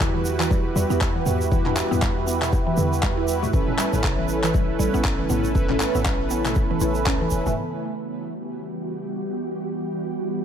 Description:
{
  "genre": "afro house",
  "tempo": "119 BPM",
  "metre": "4/4",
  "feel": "swing 58% on 16ths",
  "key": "E dorian",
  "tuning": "A4 = 440 Hz",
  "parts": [
    { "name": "ethereal airy pad", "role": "sustained chords", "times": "0.0-10.4 s", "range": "C#3 to F#5", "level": "-31 LUFS", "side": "right 1 dB", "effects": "ensemble chorus, built-in reverb, sidechain pumping" },
    { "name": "mallet-like synth pluck", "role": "arpeggios", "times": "0.0-7.6 s", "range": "B2 to E4", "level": "-28 LUFS", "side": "equal", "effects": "chorus, phaser, sidechain pumping, tape echo" },
    { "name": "mellow synth brass", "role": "stabs", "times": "0.0-7.5 s", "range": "C#4 to B4", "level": "-25 LUFS", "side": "right 2 dB", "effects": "chorus, phaser, sidechain pumping, tape echo" },
    { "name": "warm 808-style bass", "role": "bass", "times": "0.0-7.5 s", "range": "E1 to E2", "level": "-27 LUFS", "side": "left 1 dB", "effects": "tube saturation, sidechain pumping" },
    { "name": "deep house drum kit", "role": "drums", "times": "0.0-7.5 s", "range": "handclaps, toms", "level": "-28 LUFS", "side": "equal", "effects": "none" },
    { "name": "electronic kick drum", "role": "drums", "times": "0.0-7.2 s", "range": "none", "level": "-24 LUFS", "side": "equal", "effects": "none" },
    { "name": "egg shaker", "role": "percussion", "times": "0.0-7.5 s", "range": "none", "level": "-36 LUFS", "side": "right 5 dB", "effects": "none" }
  ],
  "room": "light reverb",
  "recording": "none",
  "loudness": "-20 LUFS",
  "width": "side -8 dB against mid",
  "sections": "0.0-7.6 A section; 7.6-10.4 B section",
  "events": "none",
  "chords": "0.0 Emadd9; 3.5 Aadd9; 7.6 Emadd9",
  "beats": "0.01 0.51 1.01 | 1.52 2.02 2.53 3.03 | 3.53 4.04 4.54 5.05 | 5.55 6.05 6.56 7.06 | 7.57 8.07 8.58 9.08 | 9.58 10.09"
}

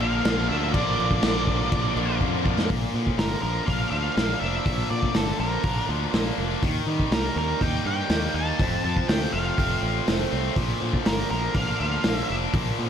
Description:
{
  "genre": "classic rock",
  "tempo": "122 BPM",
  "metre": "4/4",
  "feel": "straight",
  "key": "unclear",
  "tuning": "A4 = 440 Hz",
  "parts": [
    { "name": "octave-fuzz lead guitar", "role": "melody", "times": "0.0-12.4 s", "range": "A4 to A5", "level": "-29 LUFS", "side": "right 1 dB", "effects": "distortion, tape echo" },
    { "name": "bright tonewheel organ", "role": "sustained chords", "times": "0.0-2.7 s", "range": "D4 to D5", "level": "-38 LUFS", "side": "equal", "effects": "none" },
    { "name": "raw garage guitar", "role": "riff", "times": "0.0-12.9 s", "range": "F2 to G4", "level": "-31 LUFS", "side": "right 11 dB", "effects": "overdrive, slapback echo" },
    { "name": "tight distorted guitar", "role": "riff", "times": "0.0-12.9 s", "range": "F2 to Eb4", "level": "-30 LUFS", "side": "left 11 dB", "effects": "distortion, slapback echo" },
    { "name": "tight distorted guitar", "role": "riff", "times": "0.0-2.7 s", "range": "Bb2 to D4", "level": "-30 LUFS", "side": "left 1 dB", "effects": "distortion" },
    { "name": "growling fingered electric bass", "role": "bass", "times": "0.0-12.9 s", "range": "F1 to Eb3", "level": "-29 LUFS", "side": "equal", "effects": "overdrive" },
    { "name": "cowbell", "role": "percussion", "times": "0.0-2.3 s", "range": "none", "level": "-42 LUFS", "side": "left 4 dB", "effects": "none" },
    { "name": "vintage drum kit", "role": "drums", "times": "0.3-12.7 s", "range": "crash cymbal, hi-hat, kick drum, snare drum", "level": "-26 LUFS", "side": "equal", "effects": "none" }
  ],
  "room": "moderate scoring stage reverb, RT60 1.5 s, small room ambience",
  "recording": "big arena sound",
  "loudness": "-22 LUFS",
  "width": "side -8 dB against mid",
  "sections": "0.0-2.7 A section; 2.7-12.9 B section",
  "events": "drum fill 2.2-2.7",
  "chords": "0.0 Bb; 6.6 Eb; 8.6 F; 10.6 Bb",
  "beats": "0.25 | 0.74 1.23 1.72 2.21 | 2.70 3.19 3.68 4.17 | 4.66 5.16 5.65 6.14 | 6.63 7.12 7.62 8.11 | 8.60 9.09 9.59 10.08 | 10.57 11.06 11.55 12.05 | 12.54"
}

